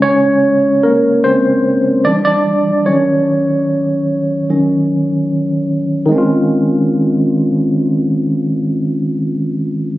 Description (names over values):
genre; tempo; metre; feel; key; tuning
R&B; 74 BPM; 4/4; straight; Db major; A4 = 442 Hz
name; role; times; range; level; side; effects
tine electric piano; solo; 0.0-10.0 s; Db3 to D5; -12 LUFS; equal; fast stereo tremolo
room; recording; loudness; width
light reverb; recorded on a phone in the room, club reverb, nothing above 7.5 kHz; -12 LUFS; side -16 dB against mid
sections
0.0-6.1 A section; 6.1-9.4 B section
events
tine electric piano solo 0.0-6.1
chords
0.0 Bbm7/Db; 2.1 Em7; 2.9 Ebm7; 6.1 Dbmaj7